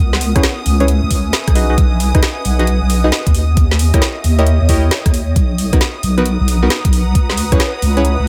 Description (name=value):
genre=UK garage, two-step garage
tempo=134 BPM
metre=4/4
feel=swing 65% on 16ths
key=unclear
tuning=A4 = 440 Hz
part: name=clear studio violin section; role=sustained chords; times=0.0-8.3 s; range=D#6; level=-30 LUFS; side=equal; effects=sidechain pumping
part: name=deep soft wobble bass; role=bass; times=0.0-8.3 s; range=B1 to D#2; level=-17 LUFS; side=equal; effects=chorus, sidechain pumping
part: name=ethereal airy pad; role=texture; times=0.0-8.3 s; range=B3 to A#5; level=-29 LUFS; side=equal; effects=ensemble chorus, built-in reverb, phaser, sidechain pumping
part: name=garage drum kit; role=drums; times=0.1-8.2 s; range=hi-hat, rim click, snare drum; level=-22 LUFS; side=equal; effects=none
part: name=deep mellow chord stab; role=stabs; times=0.4-8.0 s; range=B3 to D#5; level=-22 LUFS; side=equal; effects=chorus, cassette tape, delay
part: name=electronic kick drum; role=drums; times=0.4-7.6 s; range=none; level=-16 LUFS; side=equal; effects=overdrive
room=digital ambience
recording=none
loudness=-14 LUFS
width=mono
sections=0.0-8.3 A section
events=none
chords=0.0 C#m7; 1.6 G#m7/B; 3.3 D#7b9; 5.4 Bmaj7; 7.2 C#m7